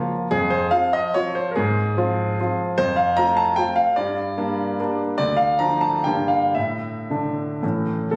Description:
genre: classical, romantic triple-time dance for piano with dotted rhythms.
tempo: 108-161 BPM.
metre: 3/4.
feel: rubato.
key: unclear.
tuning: A4 = 445 Hz.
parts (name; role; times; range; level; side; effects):
warm concert grand piano; solo; 0.0-8.2 s; D2 to Bb5; -22 LUFS; equal; none.
room: moderate recital hall reverb, RT60 1.5 s.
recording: recorded on a phone in the room, studio reverb, compression.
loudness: -22 LUFS.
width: mono.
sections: 0.0-8.1 A section.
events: none.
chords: 0.3 F5; 1.6 Fm/Ab; 2.8 F; 4.0 Gm; 5.2 Dm; 6.1 Gm; 6.6 Asus4; 7.6 A.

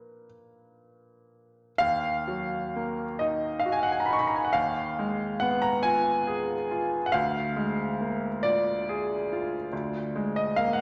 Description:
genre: classical, romantic nocturne for solo piano.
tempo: 38-49 BPM (dotted quarters).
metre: 12/8.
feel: rubato.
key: Eb minor.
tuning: A4 = 440 Hz.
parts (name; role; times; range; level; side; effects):
clear baby grand piano; solo; 0.0-10.8 s; D2 to Db6; -28 LUFS; equal; none.
room: wet concert hall reverb, RT60 1.8 s.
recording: none.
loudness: -28 LUFS.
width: mono.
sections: 0.0-1.8 A section; 1.8-10.8 A section.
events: none.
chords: 0.0 Bb; 1.8 Ebm; 4.5 Fm7b5/Eb; 7.1 Bb7/D.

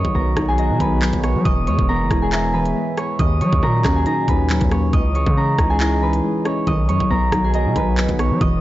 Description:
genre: hip hop, drill.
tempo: 138 BPM.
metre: 4/4.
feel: half-time.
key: unclear.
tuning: A4 = 439 Hz.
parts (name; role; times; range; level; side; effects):
Celtic harp; melody; 0.0-8.6 s; Db4 to D#6; -22 LUFS; right 1 dB; tape echo.
warbly lo-fi synth keys; accompaniment; 0.0-8.6 s; Bb2 to E5; -22 LUFS; equal; chorus.
dark analog pad; sustained chords; 0.0-8.6 s; Bb2 to Eb5; -28 LUFS; equal; chorus.
distorted 808-style bass; bass; 0.0-8.6 s; E1 to F#3; -20 LUFS; equal; distortion.
drill drum kit; drums; 0.0-8.5 s; handclaps, hi-hat, kick drum, rim click; -22 LUFS; equal; none.
room: digital ambience.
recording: dry, gritty hardware recording, transformer saturation, vinyl crackle, nothing above 7.7 kHz.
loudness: -16 LUFS.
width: side -15 dB against mid.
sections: 0.0-8.6 A section.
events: none.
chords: 0.0 B; 1.5 E; 3.2 Ebm7; 4.9 Dbmadd9; 6.7 B.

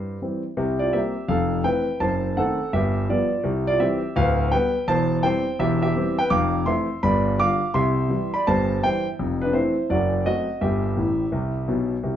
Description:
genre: jazz, stride piano.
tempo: 167 BPM.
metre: 4/4.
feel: swing 64% on 8ths.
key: C major.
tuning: A4 = 439 Hz.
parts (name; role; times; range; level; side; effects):
warm concert grand piano; solo; 0.0-12.2 s; D1 to D6; -20 LUFS; equal; none.
room: moderate large studio reverb, RT60 0.9 s.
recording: band playing live in one room, nothing above 7.8 kHz.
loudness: -20 LUFS.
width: side -10 dB against mid.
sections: 0.6-12.0 A section.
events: grand piano fill 11.0-12.0.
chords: 0.0 C; 0.6 C7; 1.3 Fmaj7; 2.0 F#dim7; 2.7 G7; 3.4 C; 4.2 G7/D; 4.9 C/E; 6.3 Fmaj7; 7.0 G7; 7.7 C; 9.2 Fmaj7; 9.9 F#dim7; 10.6 Emadd11/G; 11.3 G.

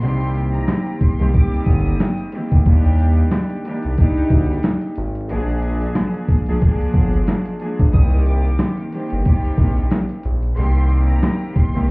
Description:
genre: hip hop, boom-bap hip-hop.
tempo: 91 BPM.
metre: 4/4.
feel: swing 58% on 16ths.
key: C minor.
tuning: A4 = 444 Hz.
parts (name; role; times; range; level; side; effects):
warm studio violin section; melody; 0.0-2.2, 7.9-11.9 s; Bb5 to Eb6; -35 LUFS; equal; high-pass filter, low-pass filter.
clear studio string section; accompaniment; 0.0-11.9 s; Eb3 to Ab4; -23 LUFS; equal; cassette tape, high-pass filter, low-pass filter.
smooth synth bass; bass; 0.0-11.9 s; G1 to Eb2; -17 LUFS; equal; none.
boom bap sampler-style drum kit; drums; 0.0-11.9 s; hi-hat, kick drum, rim click, snare drum; -16 LUFS; equal; none.
room: studio reverb.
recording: heard muffled through a wall, club reverb, vinyl crackle, EQ.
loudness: -15 LUFS.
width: side -28 dB against mid.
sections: 0.0-11.9 A section.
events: none.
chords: 0.0 Cm7; 2.7 Ebmaj7; 5.3 Bb7; 7.9 Cm7.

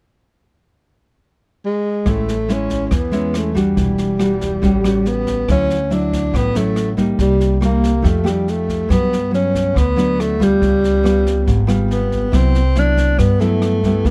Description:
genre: bossa nova.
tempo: 140 BPM.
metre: 4/4.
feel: straight.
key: unclear.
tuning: A4 = 440 Hz.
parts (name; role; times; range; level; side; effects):
breathy tenor saxophone; melody; 1.7-14.1 s; G3 to D4; -21 LUFS; equal; plate reverb.
nylon-string guitar; accompaniment; 2.1-14.1 s; G2 to G4; -22 LUFS; equal; none.
upright bass; bass; 2.1-14.1 s; E1 to G2; -22 LUFS; equal; none.
jazz brush drum kit; drums; 2.1-14.1 s; kick drum, rim click, snare drum; -27 LUFS; equal; none.
room: light reverb.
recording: dark, warm production.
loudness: -17 LUFS.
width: mono.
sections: 0.3-2.1 A section; 2.1-14.1 B section.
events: none.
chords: 0.3 N.C.; 2.1 Amaj7; 3.8 Em9; 4.6 A13; 5.5 Dmaj9; 7.2 Cm7; 8.0 F9; 8.9 Gmaj7; 10.6 C#7#11; 12.3 Cmaj9#11.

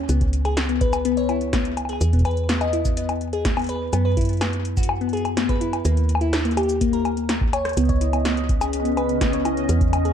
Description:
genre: IDM.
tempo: 125 BPM.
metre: 4/4.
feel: straight.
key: C# minor.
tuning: A4 = 440 Hz.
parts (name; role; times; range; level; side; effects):
woody FM bass; bass; 0.0-10.1 s; C#2 to F#2; -24 LUFS; equal; none.
harp-like synth pluck; arpeggios; 0.1-10.1 s; A#3 to D#5; -24 LUFS; left 2 dB; chorus, tape echo.
electro analog drum machine; drums; 0.1-10.1 s; bongos, cabasa, hi-hat, rim click, snare drum; -27 LUFS; left 1 dB; ping-pong delay.
electronic kick drum; drums; 0.2-9.9 s; none; -23 LUFS; equal; none.
glassy FM pad; sustained chords; 8.2-10.1 s; C#3 to C#4; -26 LUFS; left 3 dB; ensemble chorus, built-in reverb, sidechain pumping.
bubbling stepped-filter texture; texture; 7.8-10.1 s; D#5; -30 LUFS; right 8 dB; chorus, built-in reverb.
room: light reverb.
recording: dark, warm production.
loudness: -19 LUFS.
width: side -8 dB against mid.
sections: 0.0-10.1 A section.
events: drum fill 7.4-7.8.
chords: 0.1 C#7(no3); 2.0 E5; 3.9 F#sus4; 5.9 D#5; 7.8 C#7(no3).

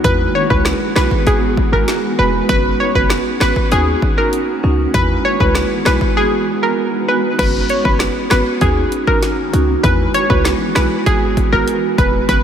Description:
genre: dancehall.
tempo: 98 BPM.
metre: 4/4.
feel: straight.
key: G# minor.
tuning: A4 = 440 Hz.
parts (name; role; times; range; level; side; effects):
glassy wavetable pluck; melody; 0.0-12.4 s; G#4 to C#5; -18 LUFS; left 1 dB; chorus, diffuse ambient delay.
marimba with medium mallets; accompaniment; 0.0-12.4 s; G#3 to F#4; -20 LUFS; right 4 dB; none.
granular cloud pad; sustained chords; 0.0-12.4 s; D#3 to B4; -24 LUFS; equal; built-in reverb, sidechain pumping.
short 808-style bass; bass; 0.0-12.4 s; E1 to E2; -18 LUFS; equal; none.
deep house drum kit; drums; 0.0-12.4 s; crash cymbal, hi-hat, kick drum, rim click, snare drum; -19 LUFS; equal; none.
room: moderate cathedral reverb, RT60 5.0 s.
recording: dreamy mix soaked in reverb.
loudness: -13 LUFS.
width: side -8 dB against mid.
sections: 0.0-7.4 A section; 7.4-12.4 B section.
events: none.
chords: 0.0 Eadd9; 1.3 G#m7; 2.5 F#sus4; 3.7 D#m7; 4.9 Eadd9; 6.2 G#m7; 7.4 F#sus4; 8.6 D#m7; 9.8 Eadd9; 11.1 G#m7.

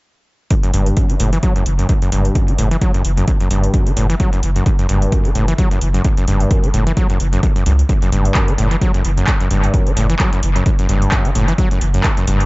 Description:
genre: acid house.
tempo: 130 BPM.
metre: 4/4.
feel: swing 56% on 16ths.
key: F# phrygian.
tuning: A4 = 439 Hz.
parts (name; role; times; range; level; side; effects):
overdriven acid bass; riff; 0.5-12.5 s; F#2 to F#3; -19 LUFS; equal; distortion, sidechain pumping, tape echo.
booming analog drum machine; drums; 0.5-12.5 s; handclaps, hi-hat; -24 LUFS; equal; overdrive, tape echo.
electronic kick drum; drums; 0.5-12.1 s; none; -16 LUFS; equal; none.
saturated sub bass; bass; 0.7-12.4 s; F#1 to C#2; -16 LUFS; equal; sidechain pumping.
room: little or no reverb.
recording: echo-heavy mix, nothing above 7.8 kHz.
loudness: -13 LUFS.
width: side -23 dB against mid.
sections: 0.5-12.5 A section.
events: none.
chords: none.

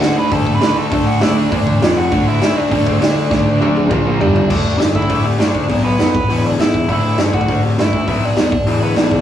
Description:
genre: punk rock.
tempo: 201 BPM.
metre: 4/4.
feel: straight.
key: unclear.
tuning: A4 = 440 Hz.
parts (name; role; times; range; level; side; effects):
biting lead guitar; melody; 0.0-9.2 s; A#3 to B5; -20 LUFS; right 1 dB; overdrive.
fuzz guitar; riff; 0.0-4.5 s; F2 to D4; -25 LUFS; right 2 dB; none.
overdriven semi-hollow guitar; riff; 0.0-9.2 s; E2 to D4; -18 LUFS; left 2 dB; none.
sludgy distorted guitar; riff; 0.0-4.5 s; F2 to D4; -21 LUFS; right 4 dB; overdrive.
growling picked electric bass; bass; 0.0-9.2 s; E1 to C3; -24 LUFS; right 1 dB; overdrive.
raw garage drum kit; drums; 0.0-9.2 s; crash cymbal, hi-hat, kick drum, snare drum, toms; -17 LUFS; equal; none.
room: light reverb.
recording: rough rehearsal-room recording, studio reverb.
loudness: -13 LUFS.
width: side -10 dB against mid.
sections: 0.0-4.5 A section; 4.5-9.2 B section.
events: drum fill 3.3-4.5.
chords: 0.0 D; 1.8 F5; 2.1 D5; 3.9 A#5; 4.2 G5; 4.5 D5; 5.7 Bm; 6.1 E5; 6.9 D; 8.1 Bm; 8.5 E5.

